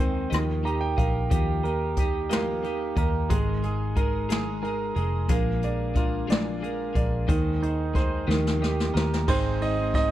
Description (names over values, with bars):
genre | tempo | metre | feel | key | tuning
six-eight pop ballad | 60 BPM (dotted quarters) | 6/8 | straight | Ab major | A4 = 442 Hz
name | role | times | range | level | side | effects
bright concert grand piano | accompaniment | 0.0-10.1 s | Eb3 to Bb5 | -28 LUFS | right 5 dB | none
twelve-string electric guitar | arpeggios | 0.0-10.1 s | Ab2 to Eb5 | -32 LUFS | left 9 dB | none
vintage muted fingered electric bass | bass | 0.0-10.1 s | F1 to Eb2 | -28 LUFS | equal | none
jazz brush drum kit | drums | 0.3-10.1 s | crash cymbal, hi-hat, kick drum, ride cymbal, rim click, snare drum | -26 LUFS | equal | none
room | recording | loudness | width
small room ambience | none | -23 LUFS | side -13 dB against mid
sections
0.0-9.3 A section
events
grand piano fill 0.3-1.3; drum fill 8.3-9.3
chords
0.3 Ebadd9; 3.3 Absus2; 5.3 Bb7; 7.3 Ab/Eb; 8.3 Ebadd9; 9.3 Ab